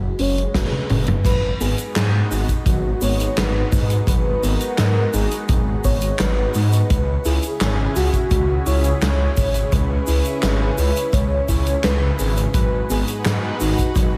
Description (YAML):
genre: synthwave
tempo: 85 BPM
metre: 4/4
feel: straight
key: G# minor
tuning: A4 = 440 Hz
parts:
  - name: warm velvety synth lead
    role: melody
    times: 0.0-14.2 s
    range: F#4 to C#5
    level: -29 LUFS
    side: equal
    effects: chorus, tape echo, shimmer reverb, slapback echo
  - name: soft round pluck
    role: arpeggios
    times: 0.0-14.2 s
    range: F#3 to G#4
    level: -32 LUFS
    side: equal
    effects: chorus, tape echo, shimmer reverb
  - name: detuned saw bass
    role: bass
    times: 0.0-14.2 s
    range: F#1 to G#2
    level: -23 LUFS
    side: equal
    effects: chorus
  - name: swell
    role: sound effects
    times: 0.1-1.3 s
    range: none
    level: -38 LUFS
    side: equal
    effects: none
  - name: natural country drum kit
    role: drums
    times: 0.2-14.1 s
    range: crash cymbal, handclaps, hi-hat, shaker, snare drum, toms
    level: -27 LUFS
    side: equal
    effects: none
  - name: kick drum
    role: drums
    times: 0.5-14.1 s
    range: none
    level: -23 LUFS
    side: equal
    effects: none
  - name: FM electric piano with soft pad layer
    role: second line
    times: 1.3-14.2 s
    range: F#4 to C#5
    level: -33 LUFS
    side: equal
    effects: none
  - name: lush unison pad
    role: sustained chords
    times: 1.8-14.2 s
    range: C#3 to B4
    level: -31 LUFS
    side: equal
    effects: chorus, phaser, sidechain pumping, shimmer reverb
  - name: analog synth brass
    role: stabs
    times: 12.5-14.2 s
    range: G#2 to B4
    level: -32 LUFS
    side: equal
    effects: none
room: moderate concert hall reverb, RT60 2.3 s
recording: big arena sound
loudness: -19 LUFS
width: mono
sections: 0.0-1.3 A section; 1.3-14.2 B section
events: band accent 0.5-0.9; drum fill 0.7-1.3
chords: 0.0 F#sus4; 1.3 G#m7; 6.9 C#m; 12.5 G#m7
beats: 0.55 | 1.25 1.96 2.67 3.37 | 4.08 4.78 5.49 6.19 | 6.90 7.61 8.31 9.02 | 9.72 10.43 11.13 11.84 | 12.55 13.25 13.96